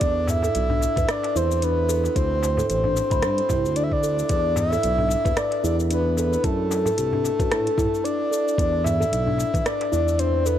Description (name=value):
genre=organic downtempo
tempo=112 BPM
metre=4/4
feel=swing 57% on 16ths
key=unclear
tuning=A4 = 440 Hz
part: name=breathy flute-like synth lead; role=melody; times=0.0-10.6 s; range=A4 to E5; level=-23 LUFS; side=equal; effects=chorus, ping-pong delay
part: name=steel tongue drum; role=arpeggios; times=0.0-10.6 s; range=D4 to B5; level=-28 LUFS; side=equal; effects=ping-pong delay
part: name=smooth synth bass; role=bass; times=0.0-10.6 s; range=A1 to A2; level=-25 LUFS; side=equal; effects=none
part: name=afro-pop drum kit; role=drums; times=0.0-10.6 s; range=cabasa, hi-hat, rim click, toms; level=-30 LUFS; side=equal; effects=none
part: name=electronic kick drum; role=drums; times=0.0-9.6 s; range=none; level=-26 LUFS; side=equal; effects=none
part: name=darbuka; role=percussion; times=0.3-10.6 s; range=none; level=-33 LUFS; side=equal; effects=none
room=light reverb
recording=none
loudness=-20 LUFS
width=side -10 dB against mid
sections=0.0-10.6 A section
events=none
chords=0.0 E5; 2.2 D7sus4; 4.3 E5; 6.4 F#dim; 8.6 E5